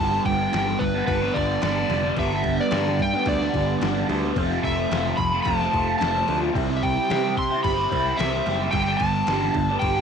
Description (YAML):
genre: garage rock duo or trio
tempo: 110 BPM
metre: 4/4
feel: straight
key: G mixolydian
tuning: A4 = 440 Hz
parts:
  - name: overdriven slide guitar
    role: melody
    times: 0.0-10.0 s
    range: B4 to C6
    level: -25 LUFS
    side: equal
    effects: none
  - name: crunchy overdriven guitar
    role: riff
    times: 0.0-10.0 s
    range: F2 to G4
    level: -24 LUFS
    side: right 1 dB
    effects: phaser
  - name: modern bright picked electric bass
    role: bass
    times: 0.0-10.0 s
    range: F1 to C3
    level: -28 LUFS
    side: equal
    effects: none
  - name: trip hop sampler-style drum kit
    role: drums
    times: 0.3-9.9 s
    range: crash cymbal, kick drum, snare drum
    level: -30 LUFS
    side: left 3 dB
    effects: none
room: light reverb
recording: 1960s-style stereo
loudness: -20 LUFS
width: side -7 dB against mid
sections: 0.0-10.0 A section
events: none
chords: 0.0 G; 4.4 F; 6.6 C; 8.7 G